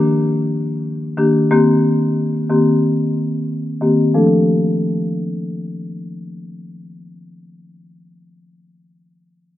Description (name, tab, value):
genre	dancehall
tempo	91 BPM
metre	4/4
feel	straight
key	D phrygian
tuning	A4 = 439 Hz
part	marimba with medium mallets	accompaniment	0.0-7.7 s	Eb3 to A4	-15 LUFS	left 1 dB	none
room	light reverb, small room ambience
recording	dark, warm production, low-pass filter, nothing above 10.4 kHz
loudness	-14 LUFS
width	side -14 dB against mid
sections	0.0-4.1 A section; 4.1-6.8 B section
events	filter sweep 0.0-4.1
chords	0.0 Ebmaj7; 1.5 Cm7; 4.1 Dm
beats	0.19 0.85 | 1.51 2.17 2.83 3.49 | 4.14 4.80 5.46 6.12